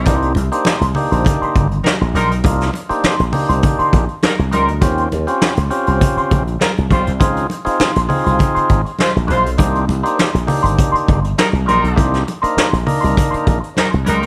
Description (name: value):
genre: funk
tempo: 101 BPM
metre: 4/4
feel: straight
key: unclear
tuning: A4 = 440 Hz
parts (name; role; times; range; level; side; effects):
- warm horn section; second line; 0.0-14.3 s; G3 to C5; -24 LUFS; equal; slapback echo
- slap bass with an envelope filter; bass; 0.0-14.3 s; G1 to Eb2; -20 LUFS; equal; none
- clean electric guitar; accompaniment; 0.1-14.3 s; Db4 to C5; -24 LUFS; equal; wah, analog chorus
- percussive tonewheel organ; stabs; 0.1-13.6 s; Bb3 to Bb4; -22 LUFS; equal; overdrive, slapback echo
- vintage brush drum kit; drums; 0.1-14.3 s; hi-hat, kick drum, snare drum; -20 LUFS; equal; none
- congas; percussion; 0.1-14.2 s; none; -26 LUFS; equal; none
room: light reverb, small room reverb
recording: none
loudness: -16 LUFS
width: mono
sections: 0.0-14.3 A section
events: none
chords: 0.1 Cm7; 4.8 Eb13; 7.2 Dbmaj9 (rootless); 9.6 Cm7